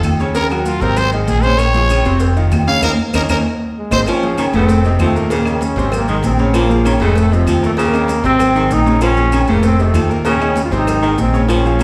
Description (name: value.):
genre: latin, salsa.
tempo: 194 BPM.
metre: 4/4.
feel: straight.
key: unclear.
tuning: A4 = 439 Hz.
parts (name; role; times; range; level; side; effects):
bright upright piano; accompaniment; 0.0-11.8 s; A2 to Db5; -21 LUFS; equal; none.
fingered electric bass; bass; 0.0-11.8 s; F1 to Eb2; -19 LUFS; equal; none.
agogo bells and timbales; percussion; 0.0-11.8 s; none; -29 LUFS; equal; none.
claves; percussion; 0.0-11.8 s; none; -34 LUFS; equal; none.
congas; percussion; 0.0-11.8 s; none; -26 LUFS; equal; none.
cowbell; percussion; 0.0-11.8 s; none; -32 LUFS; equal; none.
maracas; percussion; 0.0-11.8 s; none; -38 LUFS; equal; none.
growling trumpet; melody; 0.4-4.0 s; Db4 to F5; -21 LUFS; equal; none.
clear trombone; melody; 3.8-11.8 s; F3 to F4; -20 LUFS; equal; none.
clear baritone saxophone; second line; 4.1-11.8 s; Db3 to F3; -23 LUFS; equal; none.
room: wet recital hall reverb, RT60 1.4 s.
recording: recorded in a church or concert hall, vinyl crackle.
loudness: -15 LUFS.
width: mono.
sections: 0.0-4.1 A section; 4.1-11.8 B section.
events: trumpet solo 0.0-4.1; band accent 2.8-4.1; drum fill 3.1-4.1.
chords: 0.4 Ebm7; 1.0 Ab; 1.6 Bbm7; 2.2 F5; 2.8 Eb5; 3.5 Ab; 4.1 F(b13); 4.7 F7; 5.3 Ab; 6.5 Bbm7; 7.2 F7; 7.8 Ab; 9.0 Bbm7; 9.6 F7; 10.3 Ab.